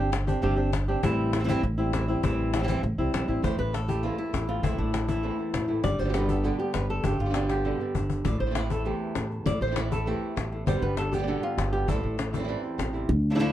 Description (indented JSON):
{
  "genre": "flamenco",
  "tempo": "199 BPM",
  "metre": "4/4",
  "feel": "straight",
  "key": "A minor",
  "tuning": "A4 = 439 Hz",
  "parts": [
    { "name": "flamenco guitar", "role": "melody", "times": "0.0-13.5 s", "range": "E2 to D5", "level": "-29 LUFS", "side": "equal", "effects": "none" },
    { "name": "upright bass", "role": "bass", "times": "0.0-13.5 s", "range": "G1 to D2", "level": "-28 LUFS", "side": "equal", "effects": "none" },
    { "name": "cajon", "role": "percussion", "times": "0.1-13.1 s", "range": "none", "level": "-32 LUFS", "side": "left 5 dB", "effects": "none" },
    { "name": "flamenco guitar", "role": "stabs", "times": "3.4-13.1 s", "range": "B2 to G4", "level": "-34 LUFS", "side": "right 4 dB", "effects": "none" }
  ],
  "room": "light reverb",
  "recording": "dark, warm production",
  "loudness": "-25 LUFS",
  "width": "side -12 dB against mid",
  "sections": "0.0-3.4 A section; 3.4-13.1 B section",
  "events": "drum fill 7.5-8.2",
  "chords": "0.0 Gsus4; 1.0 Am7; 3.4 Am; 5.8 G; 8.2 Am; 10.7 G; 11.9 Am7"
}